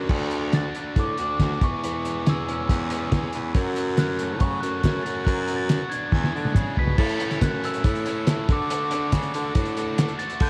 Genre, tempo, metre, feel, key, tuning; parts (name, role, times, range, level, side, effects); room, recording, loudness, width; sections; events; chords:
indie rock; 140 BPM; 4/4; straight; A4 = 440 Hz
high-gain distorted guitar; riff; 0.0-10.5 s; E2 to G#4; -38 LUFS; equal; distortion, subtle chorus, slapback echo
overdriven electric guitar; riff; 0.0-10.5 s; A2 to B4; -36 LUFS; equal
bright baritone saxophone; bass; 0.0-10.5 s; D2 to D3; -30 LUFS; equal
cloth-damped thuddy drum kit; drums; 0.1-10.5 s; crash cymbal, hi-hat, kick drum, snare drum, toms; -26 LUFS; equal
glockenspiel with rubber mallets; melody; 0.5-10.5 s; C#6 to B6; -33 LUFS; equal; slapback echo
group handclap; percussion; 3.8-10.1 s; -45 LUFS; equal
light reverb; dark, warm production; -24 LUFS; mono
0.1-7.0 A section; 7.0-10.5 B section
drum fill 6.1-7.0
0.1 D; 1.6 E6; 3.6 F#m; 5.3 Bm/F#; 6.1 E7; 7.0 A; 8.5 D